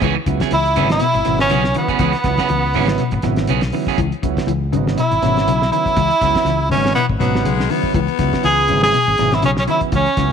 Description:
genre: afrobeat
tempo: 121 BPM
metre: 4/4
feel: swing 55% on 16ths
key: C# minor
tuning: A4 = 440 Hz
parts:
  - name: combo organ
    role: accompaniment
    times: 0.0-10.3 s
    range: C#3 to E4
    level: -24 LUFS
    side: right 13 dB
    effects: none
  - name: mellow electric guitar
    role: arpeggios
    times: 0.0-10.3 s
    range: B2 to E3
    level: -23 LUFS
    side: left 10 dB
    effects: ensemble chorus
  - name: electric guitar at the edge of break-up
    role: stabs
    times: 0.0-4.0 s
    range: E3 to G#4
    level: -24 LUFS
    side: right 12 dB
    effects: none
  - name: fingered electric bass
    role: bass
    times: 0.0-10.3 s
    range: G#1 to C#2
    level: -21 LUFS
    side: left 1 dB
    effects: none
  - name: cloth-damped thuddy drum kit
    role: drums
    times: 0.0-10.3 s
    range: hi-hat, kick drum, snare drum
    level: -24 LUFS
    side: left 1 dB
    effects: none
  - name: bright tenor saxophone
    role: melody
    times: 0.5-10.3 s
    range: B3 to G#4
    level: -18 LUFS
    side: equal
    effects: none
  - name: clear trumpet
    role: second line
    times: 0.5-10.3 s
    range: B3 to G#4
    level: -25 LUFS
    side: right 12 dB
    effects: none
  - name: raspy baritone saxophone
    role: second line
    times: 7.0-8.9 s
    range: E3 to B3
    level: -23 LUFS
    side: left 14 dB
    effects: none
room: light reverb, small room reverb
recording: 1960s-style stereo with parts hard left and right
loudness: -14 LUFS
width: side -7 dB against mid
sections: 0.0-4.0 A section; 4.0-10.3 A section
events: none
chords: 0.0 C#m7

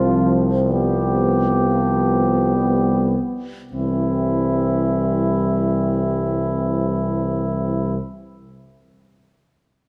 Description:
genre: classical, hymn-like piece for brass band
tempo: free time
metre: none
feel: none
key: C major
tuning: A4 = 441 Hz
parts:
  - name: warm cornet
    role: melody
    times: 0.0-8.0 s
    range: E4 to G4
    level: -28 LUFS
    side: equal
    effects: none
  - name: mellow French horn section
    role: second line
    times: 0.0-8.0 s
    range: B3 to C4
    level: -25 LUFS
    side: equal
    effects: none
  - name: clear trombone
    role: accompaniment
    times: 0.0-8.0 s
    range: E3 to G3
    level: -30 LUFS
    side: equal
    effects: none
  - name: warm euphonium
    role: accompaniment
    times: 0.0-8.0 s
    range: F3 to G3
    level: -30 LUFS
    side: equal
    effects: none
  - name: warm tuba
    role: bass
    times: 0.0-8.0 s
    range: C2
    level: -24 LUFS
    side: equal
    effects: none
room: moderate concert hall reverb, RT60 2.1 s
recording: none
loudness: -20 LUFS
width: mono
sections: 0.0-3.7 A section; 3.7-9.9 B section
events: slowing down 0.0-3.7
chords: 0.0 F5/C; 0.7 G7/C; 3.7 C

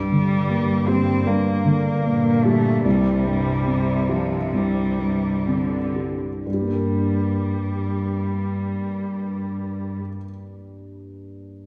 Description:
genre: cinematic, emotional film score for orchestra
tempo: 59-80 BPM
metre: 4/4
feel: rubato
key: G minor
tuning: A4 = 438 Hz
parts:
  - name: rich cello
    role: melody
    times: 0.0-10.0 s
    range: F3 to C4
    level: -28 LUFS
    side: equal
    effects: none
  - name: felt-muted upright piano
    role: accompaniment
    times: 0.0-11.7 s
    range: C2 to Bb4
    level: -25 LUFS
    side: equal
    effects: none
  - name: concert harp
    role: arpeggios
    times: 0.0-2.0 s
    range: none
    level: barely audible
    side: none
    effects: none
  - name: warm studio cello section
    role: bass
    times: 0.0-10.0 s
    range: G2 to D3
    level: -29 LUFS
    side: equal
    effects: none
room: wet scoring stage reverb, RT60 2.2 s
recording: heard from further back in the room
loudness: -22 LUFS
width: mono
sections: 0.0-6.5 A section; 6.5-10.4 B section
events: slowing down 0.0-6.5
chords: 0.0 Gm; 2.8 Csus2; 6.5 Gm

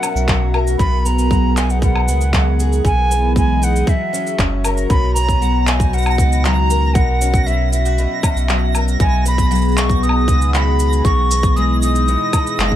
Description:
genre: folktronica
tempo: 117 BPM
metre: 4/4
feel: straight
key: B major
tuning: A4 = 441 Hz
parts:
  - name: silver concert flute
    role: melody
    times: 0.0-12.8 s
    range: E5 to D#6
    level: -22 LUFS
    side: equal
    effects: ping-pong delay
  - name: warm analog pad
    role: sustained chords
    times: 0.0-12.8 s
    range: E3 to A#5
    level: -25 LUFS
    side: equal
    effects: chorus
  - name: picked twelve-string acoustic guitar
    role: arpeggios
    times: 0.0-12.8 s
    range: B2 to A#4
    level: -22 LUFS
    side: left 1 dB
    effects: ping-pong delay
  - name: electronic woodblock, shaker and handclaps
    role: drums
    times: 0.0-12.7 s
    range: none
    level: -23 LUFS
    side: left 1 dB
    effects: none
  - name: warm sub bass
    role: bass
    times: 0.2-12.8 s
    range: F#1 to C#2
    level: -16 LUFS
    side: equal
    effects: none
  - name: electronic kick drum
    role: drums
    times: 0.3-12.8 s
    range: none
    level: -17 LUFS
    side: equal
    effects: none
  - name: twinkling granular texture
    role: texture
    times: 5.1-12.8 s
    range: A#6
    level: -29 LUFS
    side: right 7 dB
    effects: built-in reverb
room: light reverb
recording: none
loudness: -13 LUFS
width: side -12 dB against mid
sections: 0.0-4.9 A section; 4.9-12.8 A section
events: none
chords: 0.0 F#7/B; 0.8 G#m7/B; 2.9 Emaj7/B; 3.9 F#7; 4.9 Bmaj7; 7.0 F#7/B; 9.0 G#m7/B; 11.1 Emaj7/B

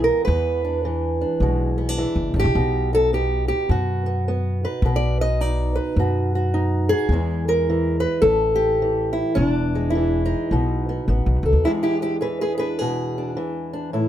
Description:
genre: acoustic country blues, solo or duo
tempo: 106 BPM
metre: 4/4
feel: swing 63% on 8ths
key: E mixolydian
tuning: A4 = 440 Hz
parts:
  - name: fingerpicked old ladder-braced acoustic guitar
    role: melody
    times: 0.0-14.1 s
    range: E2 to D#5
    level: -21 LUFS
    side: equal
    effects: none
  - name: upright bass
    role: bass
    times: 0.0-11.6 s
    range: E1 to F#2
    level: -22 LUFS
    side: equal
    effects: none
room: little or no reverb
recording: close, detailed microphones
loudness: -19 LUFS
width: side -11 dB against mid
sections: 0.0-11.7 A section; 11.7-14.1 B section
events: steel-string acoustic guitar solo 11.7-14.1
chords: 0.0 E7; 2.6 B; 7.1 E; 8.2 A5; 9.4 E7; 10.5 B7; 11.7 E7

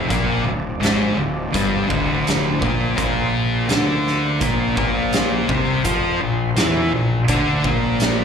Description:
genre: stoner and doom metal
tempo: 83 BPM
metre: 4/4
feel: straight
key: unclear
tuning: A4 = 440 Hz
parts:
  - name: overdriven tonewheel organ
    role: sustained chords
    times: 0.0-8.2 s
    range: F3 to C5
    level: -31 LUFS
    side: right 2 dB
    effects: slow rotary speaker, chorus vibrato
  - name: thick fuzz guitar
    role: riff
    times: 0.0-8.2 s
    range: D2 to F4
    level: -21 LUFS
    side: left 8 dB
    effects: distortion
  - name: thick fuzz guitar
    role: riff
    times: 0.0-8.2 s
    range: D2 to F4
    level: -23 LUFS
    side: right 10 dB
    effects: distortion, slapback echo
  - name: fuzz fingered electric bass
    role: bass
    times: 0.0-8.2 s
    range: D1 to F2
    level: -25 LUFS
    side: equal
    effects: overdrive
  - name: oversized low-tuned drum kit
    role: drums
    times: 0.1-8.2 s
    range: hi-hat, kick drum, snare drum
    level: -24 LUFS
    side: right 1 dB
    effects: none
room: small room ambience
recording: live gig heard through the venue's PA, club reverb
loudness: -17 LUFS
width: side -7 dB against mid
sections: 0.0-8.2 A section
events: none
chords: 0.0 Dm; 3.0 Bb5

